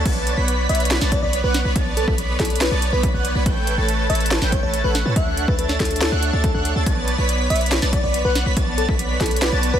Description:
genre	future bass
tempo	141 BPM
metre	4/4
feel	half-time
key	B minor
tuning	A4 = 440 Hz
part	airy dreamy lead	arpeggios	0.0-9.8 s	F#6 to B6	-28 LUFS	equal	chorus, sidechain pumping
part	soft supersaw	riff	0.0-9.8 s	A3 to B5	-24 LUFS	right 2 dB	sidechain pumping
part	warm 808-style bass	bass	0.0-9.8 s	A1 to A2	-22 LUFS	equal	sidechain pumping
part	electronic kick drum	drums	0.1-9.3 s	none	-22 LUFS	equal	overdrive
part	trap drum kit	drums	0.1-9.7 s	crash cymbal, hi-hat, snare drum	-24 LUFS	equal	overdrive
part	bell-like FM electric piano	melody	0.7-9.8 s	A4 to E5	-26 LUFS	left 2 dB	chorus, tremolo, sidechain pumping, digital delay
room	digital ambience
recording	none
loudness	-17 LUFS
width	side -9 dB against mid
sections	0.1-9.8 A section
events	drop 0.1-9.8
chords	0.1 Bm9; 3.5 A9; 5.2 Dmaj9; 6.9 Bm9

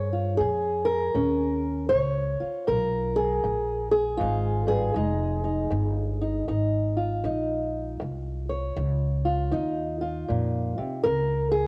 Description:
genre	acoustic country blues, solo or duo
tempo	79 BPM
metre	4/4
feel	swing 63% on 8ths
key	F minor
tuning	A4 = 441 Hz
part	fingerpicked old ladder-braced acoustic guitar	melody	0.0-11.7 s	F2 to Db5	-28 LUFS	equal	cassette tape
part	upright bass	bass	0.0-11.7 s	F1 to G2	-31 LUFS	equal	none
room	moderate spring reverb, RT60 1.7 s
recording	home recording on cassette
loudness	-26 LUFS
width	mono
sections	0.0-11.7 A section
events	none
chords	0.0 Bbm7; 5.0 Fm7; 11.1 Db5

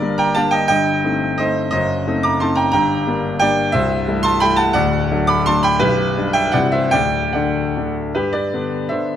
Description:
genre	classical, romantic triple-time dance for piano with dotted rhythms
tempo	138-188 BPM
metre	3/4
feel	rubato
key	G minor, G major from 3.7 s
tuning	A4 = 445 Hz
part	clear concert grand piano	solo	0.0-9.2 s	B0 to D6	-15 LUFS	equal	none
room	moderate concert hall reverb, RT60 1.9 s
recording	close, detailed microphones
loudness	-15 LUFS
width	side -10 dB against mid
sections	0.0-8.2 A section; 8.2-9.2 B section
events	none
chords	0.0 Gm; 0.7 Am7b5/G; 1.7 F#dim7; 2.7 Gm; 3.7 Am7/C; 4.8 D; 5.8 G/B; 6.5 C; 6.9 D; 8.2 G

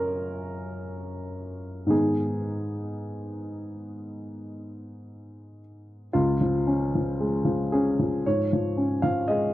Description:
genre	neoclassical minimalist piano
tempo	57 BPM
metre	4/4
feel	rubato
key	unclear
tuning	A4 = 440 Hz
part	warm upright piano	solo	0.0-9.5 s	C#2 to E#5	-25 LUFS	equal	none
room	light reverb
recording	dry, close 1970s-style studio recording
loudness	-24 LUFS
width	side -15 dB against mid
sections	0.0-6.1 A section; 6.1-9.5 A section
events	none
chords	0.0 F#maj7; 1.9 G#m; 6.1 C#

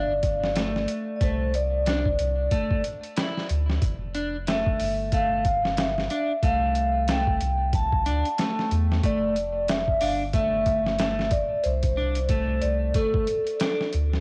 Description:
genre	trip hop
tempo	92 BPM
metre	4/4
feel	swing 59% on 16ths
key	unclear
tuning	A4 = 440 Hz
part	vibraphone with soft mallets	melody	0.0-13.9 s	A4 to A5	-28 LUFS	equal	cassette tape, tape echo
part	clean electric guitar	arpeggios	0.0-13.9 s	A3 to E4	-34 LUFS	equal	lush chorus, cassette tape, tape echo
part	soft dub sub bass	bass	0.0-14.2 s	F1 to E2	-30 LUFS	equal	tube saturation
part	trip hop sampler-style drum kit	drums	0.2-14.2 s	hi-hat, kick drum, snare drum	-30 LUFS	equal	cassette tape
room	digital ambience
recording	home recording on cassette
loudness	-25 LUFS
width	mono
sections	0.0-14.2 A section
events	none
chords	0.0 G5; 1.2 Csus2; 2.5 Dsus2; 3.8 Fsus2; 5.1 G5; 6.4 C5; 7.7 Dsus2; 9.0 Fsus2; 10.3 Emadd11/G; 11.6 Csus2; 13.0 D5

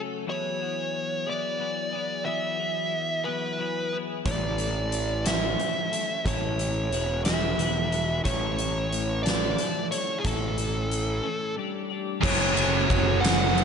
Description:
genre	quiet-loud alternative rock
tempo	60 BPM (dotted quarters)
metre	6/8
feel	straight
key	A major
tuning	A4 = 436 Hz
part	twelve-string electric guitar	arpeggios	0.0-12.2 s	A2 to D5	-33 LUFS	left 8 dB	analog chorus, slapback echo, tape echo
part	fuzz lead guitar	melody	0.3-13.6 s	G#4 to F#5	-29 LUFS	right 2 dB	distortion, slapback echo
part	fuzz picked electric bass	bass	4.3-13.6 s	E1 to A1	-29 LUFS	right 1 dB	overdrive
part	huge arena drum kit	drums	4.3-13.6 s	crash cymbal, hi-hat, kick drum, ride cymbal, snare drum	-28 LUFS	right 1 dB	none
part	bright studio string section	sustained chords	12.2-13.6 s	C#3 to A4	-37 LUFS	right 1 dB	none
part	fuzz guitar	riff	12.2-13.6 s	F#2 to C#4	-27 LUFS	right 1 dB	distortion
part	overdriven electric guitar	riff	12.2-13.6 s	F#2 to F#3	-29 LUFS	equal	spring reverb, slapback echo
room	moderate lush hall reverb, RT60 2.8 s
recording	big arena sound, nothing above 10.5 kHz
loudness	-24 LUFS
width	side -6 dB against mid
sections	0.0-12.2 A section; 12.2-13.6 B section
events	break 11.2-12.2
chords	0.3 Eadd9; 4.3 A; 6.9 E5; 8.2 A; 11.6 G5; 12.2 F#m

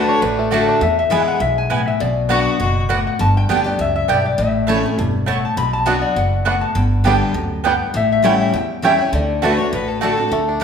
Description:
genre	bluegrass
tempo	202 BPM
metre	4/4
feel	swing 53% on 8ths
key	D major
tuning	A4 = 440 Hz
part	bluegrass banjo	melody	0.0-0.8, 5.9-10.6 s	D3 to E4	-26 LUFS	right 2 dB	none
part	lap resonator guitar	melody	0.0-10.0 s	C#5 to B5	-21 LUFS	left 5 dB	none
part	clear fiddle	second line	0.0-2.8, 9.4-10.3 s	F#4 to C#5	-23 LUFS	left 2 dB	none
part	picked steel-string acoustic guitar	accompaniment	0.0-10.6 s	E2 to G4	-20 LUFS	left 1 dB	none
part	mandolin	stabs	0.0-10.6 s	A3 to A5	-21 LUFS	right 6 dB	none
part	upright bass	bass	0.0-10.6 s	E1 to E2	-22 LUFS	equal	none
room	wet large studio reverb, RT60 1.3 s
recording	band playing live in one room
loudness	-15 LUFS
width	side -7 dB against mid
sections	0.8-10.3 A section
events	none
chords	0.0 D; 0.8 E; 2.0 Bm; 3.2 G; 4.4 A; 5.6 Bm; 6.8 G; 7.9 A7; 9.1 D

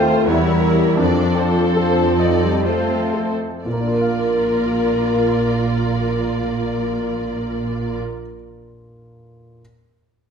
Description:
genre	classical, romantic movement for piano and orchestra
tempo	58-88 BPM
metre	3/4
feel	rubato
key	Bb major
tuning	A4 = 441 Hz
part	clear concert grand piano	melody	0.0-9.6 s	Eb2 to G5	-23 LUFS	equal	none
part	warm symphonic violin section	melody	0.0-8.0 s	C5 to D5	-32 LUFS	left 2 dB	none
part	dark symphonic violin section	second line	0.0-8.0 s	A4 to C5	-26 LUFS	left 2 dB	none
part	warm symphonic viola section	accompaniment	0.0-8.0 s	C4 to F4	-27 LUFS	right 4 dB	none
part	mellow French horn section	sustained chords	0.0-8.0 s	F3 to Bb3	-20 LUFS	left 1 dB	none
part	warm studio double bass section	bass	0.0-8.0 s	Bb1 to F2	-25 LUFS	right 3 dB	none
part	warm symphonic cello section	bass	0.0-8.0 s	Bb2 to F4	-28 LUFS	right 4 dB	none
room	wet recital hall reverb, RT60 1.5 s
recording	minimal, uncompressed stereo recording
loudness	-16 LUFS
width	side -6 dB against mid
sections	0.0-3.6 A section; 3.6-9.6 B section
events	slowing down 0.0-3.6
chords	0.3 Edim7; 1.0 F7; 3.6 Bb

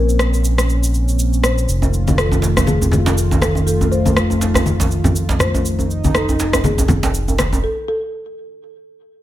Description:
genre	afro house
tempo	121 BPM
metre	4/4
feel	swing 57% on 16ths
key	unclear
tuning	A4 = 440 Hz
part	folk marimba with soft mallets	melody	0.0-9.2 s	Ab4 to C5	-25 LUFS	left 2 dB	ping-pong delay
part	warm analog pad	sustained chords	0.0-7.6 s	Eb3 to F4	-22 LUFS	equal	chorus
part	smooth synth bass	bass	0.0-7.6 s	F1 to Bb1	-18 LUFS	equal	none
part	electronic cabasa and rim click	drums	0.1-7.6 s	none	-21 LUFS	equal	none
part	djembe	percussion	1.8-7.6 s	none	-20 LUFS	right 1 dB	none
part	congas	percussion	2.1-7.5 s	none	-19 LUFS	left 1 dB	none
room	light reverb, studio ambience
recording	none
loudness	-14 LUFS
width	side -14 dB against mid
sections	0.0-9.2 A section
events	break 7.6-9.2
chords	0.0 Bbmadd9; 1.7 F7

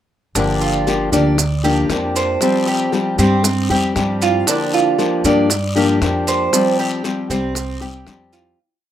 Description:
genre	latin, Cuban son and guajira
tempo	117 BPM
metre	4/4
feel	straight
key	G minor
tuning	A4 = 440 Hz
part	upright bass	bass	0.3-8.5 s	G1 to G2	-21 LUFS	right 1 dB	none
part	fingerpicked steel-string acoustic guitar	accompaniment	0.4-8.6 s	D3 to G4	-18 LUFS	left 3 dB	plate reverb
part	Cuban tres	arpeggios	0.4-8.6 s	C4 to D5	-20 LUFS	right 5 dB	plate reverb
part	bongos	percussion	0.4-8.3 s	none	-28 LUFS	left 7 dB	none
part	guiro	percussion	0.4-8.6 s	none	-30 LUFS	left 4 dB	none
part	maracas	percussion	0.4-8.6 s	none	-22 LUFS	right 7 dB	none
room	light reverb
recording	rough home demo mix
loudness	-14 LUFS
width	side -11 dB against mid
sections	0.4-8.6 montuno (vamp)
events	fade-out 6.5-8.6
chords	0.4 Gm7; 2.4 Fsus2; 4.5 Gm7; 6.5 Fsus2

